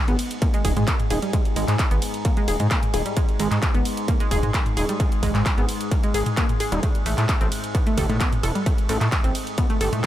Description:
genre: driving peak-time techno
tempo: 131 BPM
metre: 4/4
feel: straight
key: unclear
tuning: A4 = 440 Hz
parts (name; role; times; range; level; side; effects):
- overtone-sweeping drone; drone; 0.2-10.1 s; G#2 to G#3; -31 LUFS; left 2 dB; chorus, built-in reverb, sidechain pumping
- analog pluck; riff; 0.1-10.1 s; G3 to A4; -27 LUFS; right 1 dB; chorus, sidechain pumping, dub echo
- gritty driven synth bass; bass; 0.1-10.0 s; D#1 to A2; -23 LUFS; equal; sidechain pumping
- techno drum kit; drums; 0.1-10.1 s; handclaps, hi-hat, ride cymbal, toms; -28 LUFS; equal; overdrive
- electronic kick drum; drums; 0.4-10.1 s; none; -22 LUFS; equal; distortion, overdrive
room: little or no reverb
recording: none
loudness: -19 LUFS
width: side -13 dB against mid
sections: 0.0-10.1 A section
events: none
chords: 0.0 G#5; 6.8 N.C.

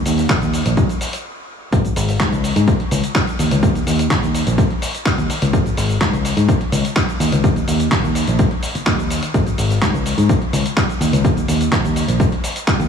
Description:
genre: filtered disco house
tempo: 126 BPM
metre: 4/4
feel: straight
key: unclear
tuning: A4 = 440 Hz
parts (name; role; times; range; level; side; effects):
- fingered electric bass; bass; 0.1-12.9 s; Ab1 to Ab2; -17 LUFS; left 1 dB; sidechain pumping, low-pass filter
- dusty soul sampler-style drum kit; drums; 0.1-12.9 s; cabasa, handclaps, hi-hat; -22 LUFS; equal; sidechain pumping on hats, sidechain pumping on perc
- electronic kick drum; drums; 0.3-12.8 s; none; -18 LUFS; equal; overdrive
room: light reverb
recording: studio ambience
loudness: -15 LUFS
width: side -7 dB against mid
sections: 0.0-1.7 A section; 1.7-12.9 B section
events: filter sweep on fingered electric bass 0.0-1.7; stop 1.2-1.7; drop 1.7-12.9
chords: none

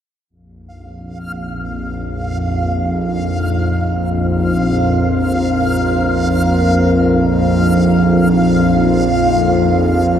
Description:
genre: dark ambient drone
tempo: free time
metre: none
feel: none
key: unclear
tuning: A4 = 440 Hz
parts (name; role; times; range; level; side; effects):
- deep dark ambient pad; sustained chords; 2.0-10.2 s; Eb4 to C5; -21 LUFS; left 1 dB; chorus, built-in reverb
- bowed-like drone; drone; 0.9-10.2 s; Bb1 to F2; -14 LUFS; equal; built-in reverb
- backwards swelling texture; texture; 1.2-10.2 s; F5; -21 LUFS; right 1 dB; built-in reverb
room: wet cathedral reverb, RT60 5.7 s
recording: in a vast, echoing space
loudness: -12 LUFS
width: side -9 dB against mid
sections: 0.3-10.2 A section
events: fade-in on ambient pad 0.3-10.2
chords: 0.3 Bbsus2

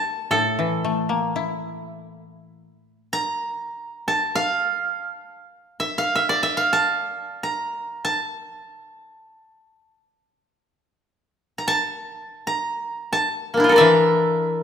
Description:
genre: japanese traditional, Japanese chamber music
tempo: free time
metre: none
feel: none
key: A miyako bushi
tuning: A4 = 442 Hz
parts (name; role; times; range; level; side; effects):
- koto; melody; 0.0-14.6 s; Bb3 to Bb5; -20 LUFS; equal; none
- koto; accompaniment; 0.3-3.4, 13.8-14.6 s; A2 to E4; -23 LUFS; left 4 dB; none
room: light reverb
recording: minimal, uncompressed stereo recording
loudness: -20 LUFS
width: side -8 dB against mid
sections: 0.0-2.1 A section; 2.1-14.6 A section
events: none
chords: none

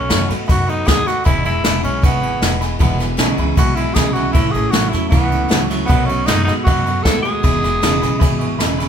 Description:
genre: rockabilly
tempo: 155 BPM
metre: 4/4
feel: straight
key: E major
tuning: A4 = 439 Hz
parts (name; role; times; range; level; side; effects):
- breathy tenor saxophone; melody; 0.0-8.5 s; B3 to A4; -20 LUFS; equal; none
- picked steel-string acoustic guitar; accompaniment; 0.0-8.9 s; E2 to F#4; -25 LUFS; left 4 dB; none
- upright bass; bass; 0.0-8.9 s; E1 to G#2; -22 LUFS; equal; none
- honky-tonk upright piano; accompaniment; 0.1-8.9 s; D#5 to C#6; -28 LUFS; right 4 dB; none
- jazz brush drum kit; drums; 0.1-8.9 s; kick drum, ride cymbal, snare drum; -17 LUFS; equal; none
- clean electric guitar; riff; 2.8-8.9 s; E2 to G#3; -22 LUFS; right 4 dB; tremolo
room: light reverb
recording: band playing live in one room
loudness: -14 LUFS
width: side -8 dB against mid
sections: 0.0-8.9 A section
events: none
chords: 0.0 B7; 1.3 E; 4.3 A; 5.9 B7; 7.4 E

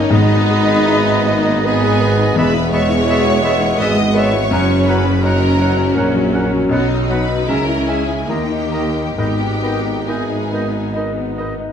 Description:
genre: classical, romantic movement for piano and orchestra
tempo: 65-86 BPM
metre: 3/4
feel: rubato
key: G# minor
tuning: A4 = 441 Hz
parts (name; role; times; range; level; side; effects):
- bright grand piano; melody; 0.0-11.7 s; B1 to D#5; -19 LUFS; left 3 dB; none
- rich studio violin section; melody; 0.0-10.9 s; D#5 to D#6; -28 LUFS; left 2 dB; none
- warm studio violin section; second line; 0.0-11.0 s; D#4 to D#5; -22 LUFS; equal; none
- rich studio viola section; accompaniment; 0.0-11.6 s; G#3 to F#4; -24 LUFS; right 2 dB; none
- warm French horn section; sustained chords; 0.0-11.4 s; F#3 to E4; -24 LUFS; left 3 dB; none
- rich studio cello section; bass; 0.0-11.6 s; E2 to D#3; -23 LUFS; right 2 dB; none
- rich studio double bass section; bass; 0.0-11.6 s; E1 to D#2; -24 LUFS; right 5 dB; none
- bright clarinet; second line; 0.1-11.5 s; A#3 to D#4; -28 LUFS; left 1 dB; none
- bright oboe; second line; 0.1-11.5 s; D#5 to F#5; -28 LUFS; right 2 dB; none
- silver concert flute; second line; 0.1-11.5 s; G#5 to B5; -30 LUFS; left 1 dB; none
- dark bassoon; accompaniment; 0.1-11.6 s; D#3 to G#3; -26 LUFS; right 1 dB; none
- warm tuba; bass; 0.1-11.6 s; E1 to D#2; -26 LUFS; right 4 dB; none
- timpani; percussion; 0.1-1.2 s; G#2; -23 LUFS; right 1 dB; none
room: wet recital hall reverb, RT60 1.4 s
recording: none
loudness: -13 LUFS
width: side -8 dB against mid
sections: 0.0-11.7 A section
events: none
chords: 0.1 G#m; 2.4 E; 4.5 F#; 6.7 B; 7.5 C#m; 8.3 D#; 9.2 G#m

